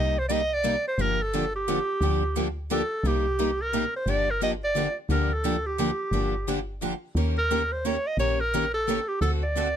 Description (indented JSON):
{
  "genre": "acoustic string swing (jazz manouche)",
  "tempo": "175 BPM",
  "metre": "3/4",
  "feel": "swing 60% on 8ths",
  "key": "G minor",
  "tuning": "A4 = 440 Hz",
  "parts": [
    { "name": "bright clarinet", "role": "melody", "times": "0.0-9.8 s", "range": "G4 to Eb5", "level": "-26 LUFS", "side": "right 1 dB", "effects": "none" },
    { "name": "picked plugged-in steel-string acoustic guitar", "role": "accompaniment", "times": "0.0-9.7 s", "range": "C3 to Bb4", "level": "-30 LUFS", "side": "left 10 dB", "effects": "none" },
    { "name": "picked steel-string acoustic guitar", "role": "accompaniment", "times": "0.0-9.7 s", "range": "C3 to Bb4", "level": "-32 LUFS", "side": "right 10 dB", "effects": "none" },
    { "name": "woody FM bass", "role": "bass", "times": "0.0-9.8 s", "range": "G1 to Eb2", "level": "-29 LUFS", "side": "equal", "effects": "none" }
  ],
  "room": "little or no reverb",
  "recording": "close, detailed microphones, lossy compression artefacts",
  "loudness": "-24 LUFS",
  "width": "side -9 dB against mid",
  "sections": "0.0-9.8 A section",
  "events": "none",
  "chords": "0.0 Cm7; 1.0 Gm7; 3.0 Cm7; 4.1 Gm7; 7.2 Eb7; 9.2 D7",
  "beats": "0.29 0.64 | 0.98 1.32 1.67 | 2.01 2.35 2.69 | 3.04 3.38 3.72 | 4.07 4.41 4.75 | 5.10 5.44 5.78 | 6.13 6.47 6.81 | 7.16 7.50 7.84 | 8.19 8.53 8.87 | 9.22 9.56"
}